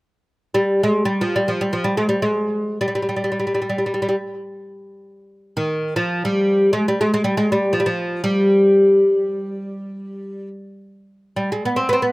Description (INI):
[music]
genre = arabic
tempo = free time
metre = none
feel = none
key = G maqam hijaz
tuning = A4 = 441 Hz
[part]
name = oud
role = melody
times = 0.5-12.1 s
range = Eb3 to C4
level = -17 LUFS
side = equal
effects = none
[sound]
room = light reverb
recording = recorded outdoors, with no room sound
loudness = -17 LUFS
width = side -21 dB against mid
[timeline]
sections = 0.1-12.1 A section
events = none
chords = none